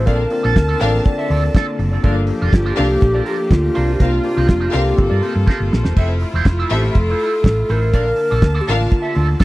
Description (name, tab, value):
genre	disco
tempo	122 BPM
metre	4/4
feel	straight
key	G dorian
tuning	A4 = 435 Hz
part	mellow hollow alto flute	melody	0.0-9.4 s	F4 to D5	-21 LUFS	equal	tape echo
part	electric guitar with an envelope filter	accompaniment	0.0-9.4 s	E4 to E5	-27 LUFS	right 7 dB	wah, spring reverb
part	tine electric piano	accompaniment	0.0-6.0 s	A3 to Bb4	-25 LUFS	left 4 dB	fast stereo tremolo
part	clear studio string section	sustained chords	0.0-9.4 s	C3 to A5	-26 LUFS	left 1 dB	none
part	hollow-body short-scale fingered electric bass	bass	0.0-9.3 s	E1 to G2	-18 LUFS	equal	none
part	dark symphonic string section	second line	0.1-8.9 s	C4 to F5	-24 LUFS	left 3 dB	none
part	damped 70s drum kit	drums	0.1-9.4 s	crash cymbal, hi-hat, kick drum, snare drum	-14 LUFS	equal	none
room	little or no reverb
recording	dry, close 1970s-style studio recording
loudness	-14 LUFS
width	side -18 dB against mid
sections	0.0-6.0 A section; 6.0-9.4 A section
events	drum fill 5.5-6.0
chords	0.1 Bbmaj7; 2.0 Gm7; 5.0 Gm11; 6.0 Fmaj7; 7.9 Bbmaj7